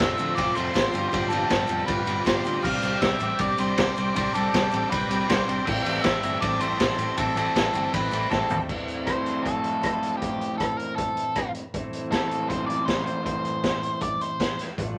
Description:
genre	indie rock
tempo	159 BPM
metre	4/4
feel	straight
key	A minor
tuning	A4 = 440 Hz
part	octave-fuzz lead guitar	melody	0.0-14.6 s	G4 to G5	-30 LUFS	equal	distortion
part	ensemble organ-string	sustained chords	0.0-8.7 s	C4 to E6	-36 LUFS	equal	ensemble chorus
part	crunchy overdriven guitar	riff	0.0-15.0 s	G2 to F4	-34 LUFS	equal	none
part	electric guitar through a small old amp	riff	0.0-15.0 s	G2 to A4	-40 LUFS	equal	none
part	growling picked electric bass	bass	0.0-8.6, 14.8-14.9 s	F1 to D2	-34 LUFS	equal	overdrive
part	raw garage drum kit	drums	0.0-14.9 s	crash cymbal, hi-hat, kick drum, ride cymbal, rim click, snare drum, toms	-29 LUFS	equal	none
part	egg shaker	percussion	0.2-8.6 s	none	-57 LUFS	equal	none
room	light reverb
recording	vinyl crackle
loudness	-25 LUFS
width	mono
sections	0.0-8.7 A section; 8.7-15.0 B section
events	drum fill 8.3-8.7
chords	0.0 Fmaj7; 0.9 G7sus4; 2.6 Csus2; 5.7 Am7; 8.7 Am

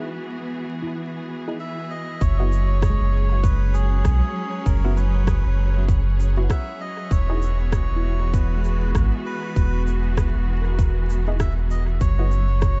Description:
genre	ambient dub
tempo	98 BPM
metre	4/4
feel	swing 59% on 16ths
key	F# mixolydian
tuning	A4 = 440 Hz
part	bright symphonic string section	sustained chords	0.0-12.8 s	E3 to C#5	-34 LUFS	equal	none
part	filtered dub chord stab	stabs	0.0-7.4, 11.3-12.3 s	B3 to G#4	-38 LUFS	equal	chorus, dub echo
part	handpan	arpeggios	0.8-12.0 s	G#3 to F#5	-39 LUFS	equal	dub echo
part	melodica	melody	1.6-12.8 s	G#4 to E5	-35 LUFS	equal	dub echo
part	warm sub bass	bass	2.2-12.8 s	E1 to B1	-22 LUFS	equal	none
part	electronic cabasa and rim click	drums	2.2-12.8 s	none	-37 LUFS	equal	dub echo
part	electronic kick drum	drums	2.2-12.8 s	none	-24 LUFS	equal	none
room	studio ambience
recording	vinyl crackle, nothing above 7.9 kHz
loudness	-22 LUFS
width	mono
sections	0.0-2.2 A section; 2.2-12.8 B section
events	filter sweep on handpan 0.0-2.2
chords	0.0 E; 2.2 F#7sus4; 7.1 E; 12.0 F#7sus4

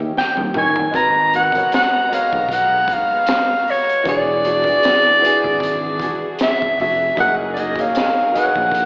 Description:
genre	R&B, neo-soul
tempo	77 BPM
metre	4/4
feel	swing 54% on 16ths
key	unclear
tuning	A4 = 440 Hz
part	warm upright piano	accompaniment	0.0-8.9 s	D#3 to G5	-24 LUFS	equal	slapback echo
part	sustaining fretless electric bass	bass	0.0-8.9 s	E1 to D#3	-26 LUFS	equal	none
part	mellow soprano saxophone	melody	0.2-8.9 s	C#5 to A#5	-15 LUFS	equal	slapback echo
part	crunchy breakbeat drum kit	drums	0.2-8.9 s	hi-hat, kick drum, snare drum, toms	-24 LUFS	equal	slapback echo
part	nylon-string guitar	second line	0.6-7.9 s	A#3 to C#5	-28 LUFS	equal	slapback echo
part	warm studio string section	sustained chords	0.9-8.9 s	E3 to A#5	-28 LUFS	equal	none
room	light reverb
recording	live gig heard through the venue's PA, recital hall reverb, AM radio sound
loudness	-14 LUFS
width	side -35 dB against mid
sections	0.0-8.9 A section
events	drum fill 0.2-0.9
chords	0.0 D#7b9; 0.9 G#m9; 4.1 E9; 7.2 F#69

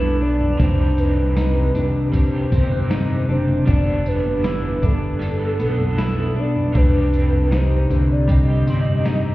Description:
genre	dream pop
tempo	78 BPM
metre	4/4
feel	straight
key	unclear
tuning	A4 = 440 Hz
part	warbly nostalgic lead	melody	0.0-9.3 s	A4 to Eb5	-26 LUFS	equal	chorus, digital delay
part	crunchy overdriven guitar	accompaniment	0.0-9.3 s	C3 to A4	-30 LUFS	right 2 dB	tremolo, analog chorus
part	warbly tape-like pad	sustained chords	0.0-9.3 s	C3 to B4	-24 LUFS	equal	chorus, built-in reverb
part	electric guitar at the edge of break-up	arpeggios	0.0-9.3 s	D3 to E4	-26 LUFS	left 2 dB	wide subtle chorus, digital delay
part	chorused synth bass	bass	0.0-9.3 s	F#1 to C2	-21 LUFS	equal	none
part	glockenspiel with hard plastic mallets	texture	0.0-9.3 s	B5 to F#6	-42 LUFS	equal	digital delay
part	gated 80s digital drum machine	drums	0.4-9.2 s	kick drum, snare drum, tambourine, toms	-21 LUFS	equal	gated reverb, gated reverb snare
room	light reverb, digital ambience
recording	heard muffled through a wall, stone room reverb, EQ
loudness	-16 LUFS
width	side -17 dB against mid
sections	0.0-9.3 A section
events	none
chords	0.0 Gadd9; 0.6 Cm; 3.7 Gadd9; 6.8 Cm

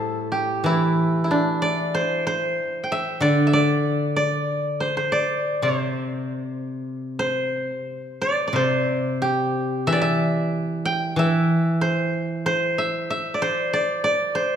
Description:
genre	chinese traditional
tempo	93 BPM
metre	4/4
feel	rubato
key	C gong mode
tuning	A4 = 439 Hz
part	koto	melody	0.0-14.6 s	D4 to G5	-22 LUFS	equal	none
part	steel-string zither	accompaniment	0.0-13.1 s	A2 to E3	-24 LUFS	equal	none
room	wet concert hall reverb, RT60 2.2 s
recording	minimal, uncompressed stereo recording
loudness	-20 LUFS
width	side -8 dB against mid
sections	0.0-7.2 A section; 7.2-14.6 B section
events	none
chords	none

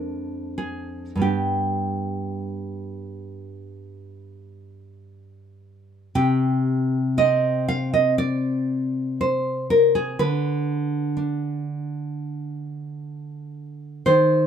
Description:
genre	romantic piece for solo classical guitar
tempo	46-63 BPM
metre	4/4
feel	rubato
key	unclear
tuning	A4 = 440 Hz
part	nylon-string guitar	solo	0.0-14.5 s	F2 to F5	-21 LUFS	equal	none
room	moderate studio reverb, RT60 0.8 s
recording	minimal, uncompressed stereo recording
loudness	-21 LUFS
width	side -8 dB against mid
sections	0.0-6.1 A section; 6.1-14.5 B section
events	none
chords	0.0 Ddim/F; 1.2 G; 6.1 N.C.

